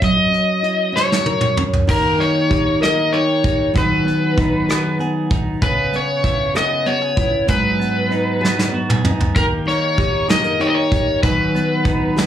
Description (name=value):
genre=six-eight pop ballad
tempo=64 BPM (dotted quarters)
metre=6/8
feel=straight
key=G# minor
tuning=A4 = 444 Hz
part: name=overdriven slide guitar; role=melody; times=0.0-12.3 s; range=A#4 to D#5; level=-19 LUFS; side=left 2 dB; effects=slapback echo
part: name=nylon-string guitar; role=accompaniment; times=0.0-12.3 s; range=G#2 to A#4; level=-20 LUFS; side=equal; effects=slapback echo
part: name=soft brush drum kit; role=drums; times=0.0-12.3 s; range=crash cymbal, hi-hat, kick drum, rim click, snare drum, toms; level=-20 LUFS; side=equal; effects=none
part: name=twelve-string electric guitar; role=arpeggios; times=1.9-12.3 s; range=F#3 to G#4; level=-25 LUFS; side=right 2 dB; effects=slapback echo
room=light reverb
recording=live gig heard through the venue's PA, club reverb, small room ambience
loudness=-15 LUFS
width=side -10 dB against mid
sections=0.0-1.9 A section; 1.9-12.3 B section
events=drum fill 1.0-1.9, 8.4-9.4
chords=0.0 F#7; 1.9 D#; 3.8 G#m7/D#; 5.6 C#m7; 7.5 G#m7; 9.4 D#; 11.2 G#m7/D#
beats=| 0.02 0.96 | 1.89 2.83 | 3.76 4.69 | 5.63 6.56 | 7.50 8.43 | 9.36 10.30 | 11.23 12.16